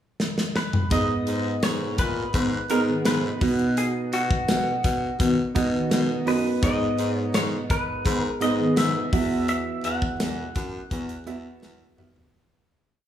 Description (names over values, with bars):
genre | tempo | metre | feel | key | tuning
1980s-style pop | 84 BPM | 4/4 | straight | G# minor | A4 = 440 Hz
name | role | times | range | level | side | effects
modern studio drum kit | drums | 0.2-12.3 s | hi-hat, kick drum, snare drum, toms | -26 LUFS | equal | gated reverb
direct-recorded clean electric guitar | melody | 0.6-10.9 s | F#4 to F#5 | -29 LUFS | left 2 dB | lush chorus, tape echo
warm concert grand piano | accompaniment | 0.9-12.4 s | G#2 to E5 | -27 LUFS | right 3 dB | none
growling baritone saxophone | bass | 0.9-12.2 s | D#2 to B2 | -29 LUFS | left 1 dB | none
tambourine | percussion | 1.6-11.8 s | none | -43 LUFS | left 5 dB | none
mellow synth brass | stabs | 2.3-11.8 s | D#3 to G#4 | -28 LUFS | left 3 dB | chorus, tape echo
room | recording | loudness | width
light reverb, small room ambience | none | -22 LUFS | side -10 dB against mid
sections
0.0-0.9 pickup bar; 0.9-12.3 chorus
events
drum fill 0.2-0.9, 11.6-12.3; fade-out 9.5-12.3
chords
0.0 N.C.; 0.9 G#m; 3.4 B; 6.6 G#m; 9.1 Esus2